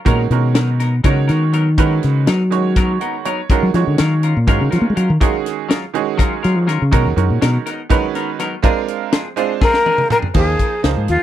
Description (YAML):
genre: electric jazz fusion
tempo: 245 BPM (eighths)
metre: 7/8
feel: straight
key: Eb minor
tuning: A4 = 440 Hz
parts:
  - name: bright concert grand piano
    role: accompaniment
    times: 0.0-11.2 s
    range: Eb3 to Gb5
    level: -21 LUFS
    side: right 13 dB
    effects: none
  - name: semi-hollow electric guitar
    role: stabs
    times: 0.1-10.3 s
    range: F3 to Bb4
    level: -24 LUFS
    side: left 5 dB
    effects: lush chorus
  - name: fingered electric bass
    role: bass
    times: 0.1-7.6, 10.3-11.2 s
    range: Db2 to Bb3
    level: -15 LUFS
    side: left 1 dB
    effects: none
  - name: tight funk drum kit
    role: drums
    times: 0.1-11.2 s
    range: crash cymbal, hi-hat, kick drum, snare drum, toms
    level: -17 LUFS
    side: left 1 dB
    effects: none
  - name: breathy bright jazz flute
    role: melody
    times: 9.6-11.2 s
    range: F4 to Bb4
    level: -16 LUFS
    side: left 2 dB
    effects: none
room: little or no reverb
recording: dry, close 1970s-style studio recording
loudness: -14 LUFS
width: side -11 dB against mid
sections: 0.0-10.4 A section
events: fingered electric bass solo 0.0-10.4; grand piano fill 2.8-3.5; drum fill 9.6-10.4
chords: 0.1 Abm9; 3.5 Ebm9; 6.9 Abm9; 8.6 Bb9; 10.4 Ebsus4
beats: | 0.06 0.31 0.55 0.80 1.04 1.29 1.53 | 1.78 2.02 2.27 2.51 2.76 3.00 3.25 | 3.50 3.74 3.98 4.23 4.47 4.72 4.96 | 5.21 5.46 5.70 5.94 6.19 6.43 6.68 | 6.92 7.17 7.41 7.66 7.90 8.15 8.39 | 8.64 8.88 9.13 9.37 9.62 9.86 10.11 | 10.35 10.60 10.84 11.09